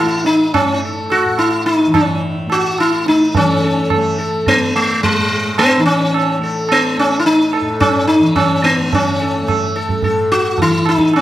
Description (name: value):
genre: indian classical, Hindustani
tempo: 108 BPM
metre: 5/4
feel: straight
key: A raga yaman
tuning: A4 = 439 Hz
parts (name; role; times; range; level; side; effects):
- sitar; melody; 0.0-11.2 s; G#3 to A4; -14 LUFS; left 1 dB; none
- tanpura; drone; 0.0-11.2 s; A2 to A3; -22 LUFS; left 1 dB; none
- tabla; percussion; 0.2-11.2 s; none; -20 LUFS; right 6 dB; none
room: moderate recital hall reverb, RT60 1.7 s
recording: none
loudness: -12 LUFS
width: side -13 dB against mid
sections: 0.0-3.3 A section; 3.3-11.2 B section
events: none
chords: none